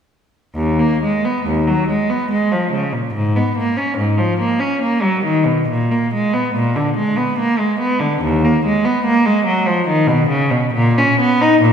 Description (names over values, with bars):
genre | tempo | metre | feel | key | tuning
classical, baroque-style suite movement for unaccompanied cello | 71 BPM | 3/4 | uneven beats, rubato | Eb minor | A4 = 441 Hz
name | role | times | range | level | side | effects
rich cello | solo | 0.5-11.7 s | Eb2 to D#4 | -14 LUFS | equal | none
room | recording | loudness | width
wet scoring stage reverb, RT60 1.5 s | minimal, uncompressed stereo recording | -14 LUFS | side -7 dB against mid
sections
0.6-11.7 A section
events
none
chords
none